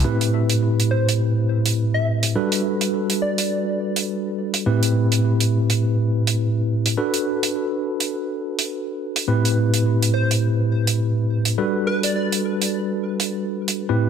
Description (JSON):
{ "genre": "glitch hop", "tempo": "104 BPM", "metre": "4/4", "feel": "swing 58% on 16ths", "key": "A dorian", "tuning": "A4 = 440 Hz", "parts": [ { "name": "bright tine electric piano", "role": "stabs", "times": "0.0-14.1 s", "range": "A2 to B4", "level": "-20 LUFS", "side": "equal", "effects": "medium stereo tremolo" }, { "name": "hi-hat", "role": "drums", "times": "0.2-13.8 s", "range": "none", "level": "-23 LUFS", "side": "right 5 dB", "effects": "none" }, { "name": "plucky unison lead", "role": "melody", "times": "0.9-4.0, 10.1-12.3 s", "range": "B4 to E5", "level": "-28 LUFS", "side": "equal", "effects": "ping-pong delay" } ], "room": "light reverb, studio ambience", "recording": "dense, heavily limited modern master", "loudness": "-19 LUFS", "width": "side -7 dB against mid", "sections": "0.0-14.1 A section", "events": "none", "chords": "0.0 Am7; 2.4 Gmaj7; 4.7 Am7; 7.0 Bm7; 9.3 Am7; 11.6 Gmaj7", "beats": "| 0.04 0.62 1.20 1.78 | 2.35 2.93 3.51 4.08 | 4.66 5.24 5.82 6.39 | 6.97 7.54 8.12 8.70 | 9.28 9.85 10.43 11.01 | 11.58 12.16 12.74 13.31 | 13.89" }